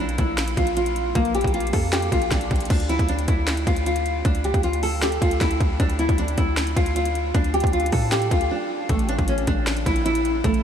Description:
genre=hip hop, trap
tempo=155 BPM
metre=4/4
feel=half-time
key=D minor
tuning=A4 = 440 Hz
part: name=nylon-string guitar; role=melody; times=0.0-10.6 s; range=A3 to A4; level=-23 LUFS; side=equal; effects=wide subtle chorus, low-pass filter, ping-pong delay
part: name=warm 808-style bass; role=bass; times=0.0-10.6 s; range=A1 to A2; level=-25 LUFS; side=equal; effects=none
part: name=trap drum kit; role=drums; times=0.1-10.6 s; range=crash cymbal, finger snaps, hi-hat, kick drum, snare drum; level=-24 LUFS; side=equal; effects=none
room=moderate huge ambient reverb, RT60 7.7 s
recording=dreamy mix soaked in reverb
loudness=-19 LUFS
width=side -8 dB against mid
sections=0.0-2.7 A section; 2.7-10.6 B section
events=break 8.5-8.9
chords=0.0 Bb5; 2.7 Dm; 8.9 Asus4

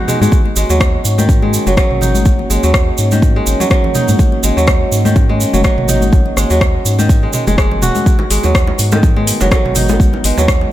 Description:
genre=afro house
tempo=124 BPM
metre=4/4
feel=swing 55% on 16ths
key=unclear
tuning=A4 = 440 Hz
part: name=dark analog pad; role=sustained chords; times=0.0-10.7 s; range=G#3 to C#5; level=-22 LUFS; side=equal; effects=chorus, sidechain pumping
part: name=kora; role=arpeggios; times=0.0-10.7 s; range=D#3 to F#4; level=-17 LUFS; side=right 1 dB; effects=sidechain pumping, ping-pong delay
part: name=afro-pop drum kit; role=drums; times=0.1-10.6 s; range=hi-hat, rim click, toms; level=-19 LUFS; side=equal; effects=studio reverb
part: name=congas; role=percussion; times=0.1-10.6 s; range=none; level=-20 LUFS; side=left 4 dB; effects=none
part: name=tube shaker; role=percussion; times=0.1-10.6 s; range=none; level=-22 LUFS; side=right 6 dB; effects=none
part: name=round analog bass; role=bass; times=0.2-10.7 s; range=D#1 to G#2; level=-16 LUFS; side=equal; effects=sidechain pumping
part: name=electronic kick drum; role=drums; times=0.3-10.6 s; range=none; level=-12 LUFS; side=equal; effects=studio reverb
part: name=bongos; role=percussion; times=8.2-10.7 s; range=none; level=-24 LUFS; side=right 3 dB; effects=none
room=small room ambience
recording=none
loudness=-10 LUFS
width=side -13 dB against mid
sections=0.0-10.7 A section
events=none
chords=0.3 F#; 8.1 G#m7

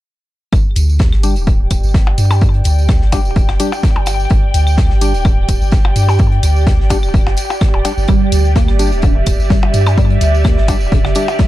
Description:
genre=minimal techno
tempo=127 BPM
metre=4/4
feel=swing 54% on 16ths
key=unclear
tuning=A4 = 439 Hz
part: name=punchy sub bass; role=bass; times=0.5-11.1 s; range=D1 to G2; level=-14 LUFS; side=equal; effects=sidechain pumping
part: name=electronic kick drum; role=drums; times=0.5-11.5 s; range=none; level=-13 LUFS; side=equal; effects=small room ambience
part: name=warm soul drum kit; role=drums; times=0.5-11.5 s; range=hi-hat, snare drum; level=-32 LUFS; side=left 2 dB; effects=sidechain pumping on hats, high-pass filter on hats, small room ambience, high-pass filter on snare, high-pass filter on room
part: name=claves and percussion blips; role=percussion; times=0.5-11.4 s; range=none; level=-24 LUFS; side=left 3 dB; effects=small room ambience, ping-pong delay
part: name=tambourine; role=percussion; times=0.5-11.5 s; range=none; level=-30 LUFS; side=right 4 dB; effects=none
part: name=airy breathy pad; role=texture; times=0.8-11.5 s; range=G4 to G5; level=-21 LUFS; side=right 2 dB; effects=chorus, sidechain pumping
part: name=electronic hi-hat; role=drums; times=0.8-11.3 s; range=none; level=-23 LUFS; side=left 2 dB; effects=small room ambience
part: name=percussive organ stab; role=stabs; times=1.2-11.3 s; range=G3 to G4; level=-21 LUFS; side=left 4 dB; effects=lush chorus, vintage 12-bit sampler grit, ping-pong delay
part: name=resonant blip pluck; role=riff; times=8.1-11.4 s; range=D3 to Bb3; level=-21 LUFS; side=right 2 dB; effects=phaser, analog chorus, sidechain pumping, tape echo
room=little or no reverb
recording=dark, warm production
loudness=-10 LUFS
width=side -15 dB against mid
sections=0.5-11.5 A section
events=none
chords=0.5 G5

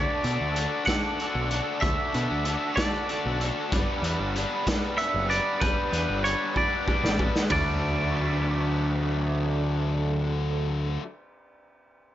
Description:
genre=indie rock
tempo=63 BPM (dotted quarters)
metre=6/8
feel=straight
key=D major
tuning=A4 = 439 Hz
part: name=twangy electric guitar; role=melody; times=0.0-11.0 s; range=B4 to F#5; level=-29 LUFS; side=right 2 dB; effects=slapback echo
part: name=glockenspiel with soft plastic mallets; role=second line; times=0.0-11.0 s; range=B5 to D7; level=-41 LUFS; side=left 6 dB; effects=none
part: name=fuzz guitar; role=riff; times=0.0-11.0 s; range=D3 to B4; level=-31 LUFS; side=left 6 dB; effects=distortion
part: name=raw garage guitar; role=riff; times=0.0-11.0 s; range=D3 to B4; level=-32 LUFS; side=right 5 dB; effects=overdrive, ensemble chorus
part: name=growling picked electric bass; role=bass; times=0.0-11.0 s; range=F#1 to B2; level=-28 LUFS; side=equal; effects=overdrive
part: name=raw garage drum kit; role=drums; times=0.2-7.7 s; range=hi-hat, kick drum, ride cymbal, snare drum, toms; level=-30 LUFS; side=equal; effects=none
room=light reverb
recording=nothing above 7.7 kHz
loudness=-24 LUFS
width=side -12 dB against mid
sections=0.0-7.5 A section; 7.5-11.3 B section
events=drum fill 6.6-7.5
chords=0.0 D6; 3.7 G; 7.5 D6

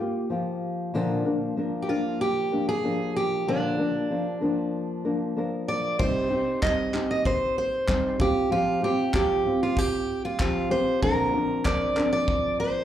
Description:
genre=acoustic pop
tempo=95 BPM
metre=4/4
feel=straight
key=unclear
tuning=A4 = 440 Hz
part: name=picked steel-string acoustic guitar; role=melody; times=0.0-12.8 s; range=D4 to Eb5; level=-26 LUFS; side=right 2 dB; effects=slapback echo
part: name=nylon-string guitar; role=accompaniment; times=0.0-12.8 s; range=Bb2 to Bb4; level=-26 LUFS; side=left 1 dB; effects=slapback echo
part: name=modern studio drum kit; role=drums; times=6.0-12.4 s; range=crash cymbal, handclaps, kick drum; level=-29 LUFS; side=equal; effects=none
part: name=group handclap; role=percussion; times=11.7-11.8 s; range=none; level=-39 LUFS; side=right 1 dB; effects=none
room=moderate club reverb, RT60 0.9 s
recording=live gig heard through the venue's PA, club reverb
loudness=-23 LUFS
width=side -10 dB against mid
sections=0.0-6.0 A section; 6.0-12.8 B section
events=none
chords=0.0 Ebadd9 (rootless); 0.9 Bb; 6.0 Cm; 8.2 Fsus2; 11.0 Bbadd9

